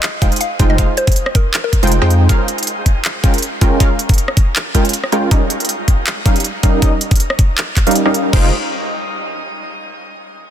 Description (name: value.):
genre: future bass.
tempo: 159 BPM.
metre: 4/4.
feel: swing 54% on 16ths, half-time.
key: F minor.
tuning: A4 = 440 Hz.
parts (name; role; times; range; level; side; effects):
pop drum kit; drums; 0.0-8.4 s; crash cymbal, handclaps, hi-hat, rim click; -20 LUFS; right 1 dB; none.
mallet-like synth pluck; melody; 0.2-2.2 s; Bb4 to F5; -23 LUFS; left 2 dB; chorus, phaser, sidechain pumping, ping-pong delay.
supersaw stab; riff; 0.2-8.5 s; G3 to G5; -18 LUFS; right 1 dB; sidechain pumping, low-pass filter, dub echo.
saturated sub bass; bass; 0.2-2.3, 8.3-8.5 s; F1 to F2; -14 LUFS; equal; sidechain pumping.
electronic kick drum; drums; 0.2-8.4 s; none; -13 LUFS; equal; none.
room: light reverb.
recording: dense, heavily limited modern master.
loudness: -12 LUFS.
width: side -10 dB against mid.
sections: 0.0-8.3 A section; 8.3-9.8 B section.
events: filter sweep on supersaw synth 0.0-8.3.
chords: 0.0 Fm7; 2.3 Bbm7; 5.3 Eb7; 8.3 Fm7.